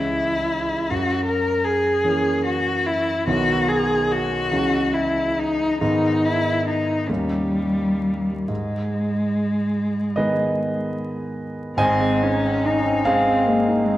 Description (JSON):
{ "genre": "classical, romantic duo for cello and grand piano", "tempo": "35-55 BPM (dotted quarters)", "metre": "6/8", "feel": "rubato", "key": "G# minor", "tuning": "A4 = 440 Hz", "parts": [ { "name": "dark cello", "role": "melody", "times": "0.0-14.0 s", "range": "G3 to A#4", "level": "-21 LUFS", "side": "left 1 dB", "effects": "none" }, { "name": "warm concert grand piano", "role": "accompaniment", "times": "0.0-14.0 s", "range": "Ab1 to Ab5", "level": "-22 LUFS", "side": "right 1 dB", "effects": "none" } ], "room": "wet scoring stage reverb, RT60 1.8 s", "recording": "vinyl crackle", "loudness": "-19 LUFS", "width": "side -14 dB against mid", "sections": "0.0-11.8 A section; 11.8-14.0 B section", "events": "none", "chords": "0.0 C#m; 0.9 F#7; 3.3 B; 4.5 C#m; 5.8 G#m; 7.1 D#7; 8.5 G#m; 11.8 Ab" }